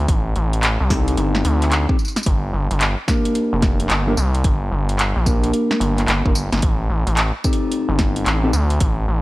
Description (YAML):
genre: glitch hop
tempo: 110 BPM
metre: 4/4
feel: swing 64% on 16ths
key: G minor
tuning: A4 = 440 Hz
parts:
  - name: gritty driven synth bass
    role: bass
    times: 0.0-9.2 s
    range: F1 to D2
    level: -19 LUFS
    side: equal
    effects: none
  - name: electronic kick drum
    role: drums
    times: 0.1-8.9 s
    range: none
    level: -20 LUFS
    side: equal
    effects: studio reverb
  - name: pop drum kit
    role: drums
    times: 0.1-8.9 s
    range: handclaps, hi-hat, snare drum, tambourine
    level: -22 LUFS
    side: equal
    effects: studio reverb
  - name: mellow electric guitar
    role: stabs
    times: 0.9-8.5 s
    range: Bb3 to Bb4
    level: -22 LUFS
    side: left 1 dB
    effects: sidechain pumping, analog delay
room: digital ambience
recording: dry, gritty hardware recording, vinyl crackle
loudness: -16 LUFS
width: side -18 dB against mid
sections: 0.0-9.2 A section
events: none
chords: 0.0 Am7b5; 2.3 Gm; 6.6 Am7b5